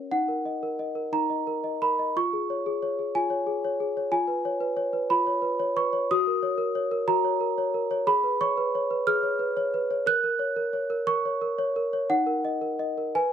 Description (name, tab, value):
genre	classical, lullaby for celesta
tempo	60 BPM (dotted quarters)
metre	6/8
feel	rubato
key	F# major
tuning	A4 = 440 Hz
part	celesta	solo	0.0-13.3 s	C#4 to F#6	-24 LUFS	equal	none
room	light reverb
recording	close, detailed microphones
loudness	-24 LUFS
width	side -8 dB against mid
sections	0.1-13.3 A section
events	none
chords	0.1 D#m; 2.1 C#/E#; 4.1 C#7/E#; 6.1 F#; 8.1 C#7/G#; 10.1 F#/A#; 12.1 D#m